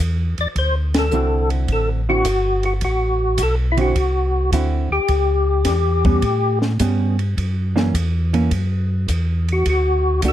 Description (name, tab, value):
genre	soul jazz organ trio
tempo	106 BPM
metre	4/4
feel	swing 68% on 8ths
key	unclear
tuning	A4 = 443 Hz
part	mellow tonewheel organ	bass	0.0-10.3 s	G1 to A2	-19 LUFS	equal	slow rotary speaker
part	percussive tonewheel organ	melody	0.4-10.3 s	E4 to D5	-20 LUFS	left 2 dB	slow rotary speaker, chorus vibrato
part	compact cocktail drum kit	drums	0.4-10.3 s	hi-hat, kick drum, ride cymbal, snare drum	-25 LUFS	equal	none
part	hollow-body jazz guitar	accompaniment	1.1-10.3 s	D3 to F#4	-22 LUFS	right 4 dB	none
room	light reverb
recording	dark, warm production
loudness	-16 LUFS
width	side -12 dB against mid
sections	0.0-10.3 A section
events	band accent 0.8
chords	0.0 N.C.; 0.6 D9; 5.1 A9; 7.4 F#7; 9.7 Bm7 (rootless)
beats	0.00 | 0.56 1.13 1.70 2.26 | 2.83 3.40 3.96 4.53 | 5.10 5.67 6.24 6.81 | 7.38 7.95 8.52 9.09 | 9.66 10.23